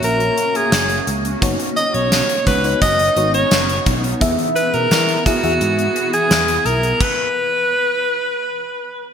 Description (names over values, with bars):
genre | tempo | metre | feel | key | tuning
1980s-style pop | 86 BPM | 4/4 | straight | unclear | A4 = 438 Hz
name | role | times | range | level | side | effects
bright alto saxophone | melody | 0.0-9.1 s | F#4 to D#5 | -18 LUFS | equal | none
mellow FM electric piano | accompaniment | 0.0-7.0 s | E3 to E5 | -23 LUFS | equal | chorus, phaser
granular cloud pad | sustained chords | 0.0-7.0 s | E3 to G#4 | -26 LUFS | equal | built-in reverb, analog chorus
sustaining fretless electric bass | bass | 0.0-6.9 s | F#1 to E3 | -22 LUFS | equal | none
gated 80s drum kit | drums | 0.0-7.2 s | crash cymbal, hi-hat, kick drum, snare drum | -19 LUFS | equal | none
tambourine | percussion | 0.0-6.8 s | none | -33 LUFS | right 7 dB | none
room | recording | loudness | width
wet lush hall reverb, RT60 2.0 s, studio reverb | bright 1980s-style digital production | -14 LUFS | side -8 dB against mid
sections
0.0-9.1 A section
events
stop 7.0-9.1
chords
0.0 F#; 1.4 Badd9/F#; 4.2 E